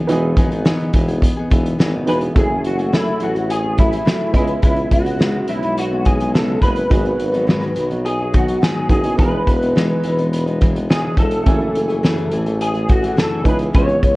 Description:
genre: indie pop, bedroom pop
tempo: 105 BPM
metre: 4/4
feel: straight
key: unclear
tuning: A4 = 440 Hz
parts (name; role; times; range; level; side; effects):
- nylon-string guitar; accompaniment; 0.0-14.2 s; F#2 to G#4; -22 LUFS; left 1 dB; wide subtle chorus, warbly pitch drift
- warm upright piano; accompaniment; 0.0-14.2 s; A3 to G#5; -25 LUFS; right 2 dB; cassette tape
- warm tuba; bass; 0.0-14.2 s; E1 to C#2; -22 LUFS; equal; none
- loose indie drum kit; drums; 0.1-14.2 s; hi-hat, kick drum, snare drum; -17 LUFS; equal; vintage 12-bit sampler grit
- electric guitar through a small old amp; melody; 2.1-14.2 s; E4 to C#5; -21 LUFS; equal; ensemble chorus, tape echo
room: light reverb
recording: worn, warbling old tape, cassette tape, warbly pitch drift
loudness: -14 LUFS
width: side -20 dB against mid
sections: 0.0-2.4 A section; 2.4-14.2 B section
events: none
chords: 0.0 Emaj7; 2.4 F#m9; 4.3 C#m7; 6.9 G#m7; 9.2 Emaj7; 11.5 F#m9; 13.5 C#m7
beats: | 0.09 0.65 1.22 1.79 | 2.36 2.92 3.49 4.06 | 4.63 5.20 5.77 6.34 | 6.91 7.48 8.05 8.62 | 9.19 9.76 10.33 10.90 | 11.47 12.04 12.61 13.18 | 13.75

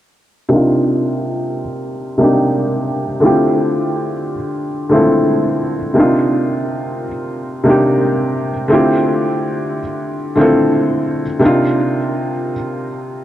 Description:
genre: hip hop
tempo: 88 BPM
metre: 4/4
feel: swing 57% on 16ths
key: C dorian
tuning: A4 = 440 Hz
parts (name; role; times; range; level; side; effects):
- felt-muted upright piano; solo; 0.5-13.2 s; C3 to A4; -14 LUFS; equal; cassette tape, low-pass filter, tape echo
room: moderate plate reverb, RT60 3.4 s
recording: dark, warm production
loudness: -13 LUFS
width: side -12 dB against mid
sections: 0.5-11.4 A section; 11.4-13.2 B section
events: filter sweep on felt piano 0.5-11.4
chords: 0.5 Cm11; 3.2 Dm11; 6.0 Cm11; 8.7 Dm11; 11.4 Cm11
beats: | 0.51 1.19 1.87 2.55 | 3.23 3.92 4.60 5.28 | 5.96 6.64 7.32 8.01 | 8.69 9.37 10.05 10.73 | 11.41 12.10 12.78

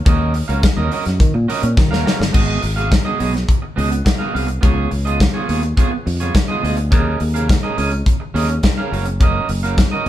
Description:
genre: disco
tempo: 105 BPM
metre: 4/4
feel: straight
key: G# dorian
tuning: A4 = 440 Hz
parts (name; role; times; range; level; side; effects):
- electric guitar at the edge of break-up; accompaniment; 0.1-10.1 s; B3 to E#5; -22 LUFS; right 4 dB; none
- fingered electric bass; bass; 0.1-10.1 s; F#1 to D#3; -19 LUFS; equal; none
- modern studio drum kit; drums; 0.1-10.1 s; crash cymbal, hi-hat, kick drum, snare drum; -16 LUFS; left 1 dB; none
room: light reverb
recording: band playing live in one room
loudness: -15 LUFS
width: side -13 dB against mid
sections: 0.0-2.3 A section; 2.3-10.1 B section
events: drum fill 1.8-2.3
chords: 0.0 D#m7; 2.3 G#m7; 4.6 C#7; 6.9 D#7sus4; 8.9 F#6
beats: | 0.06 0.63 1.20 1.77 | 2.34 2.91 3.48 4.06 | 4.63 5.20 5.77 6.34 | 6.92 7.49 8.06 8.63 | 9.20 9.78

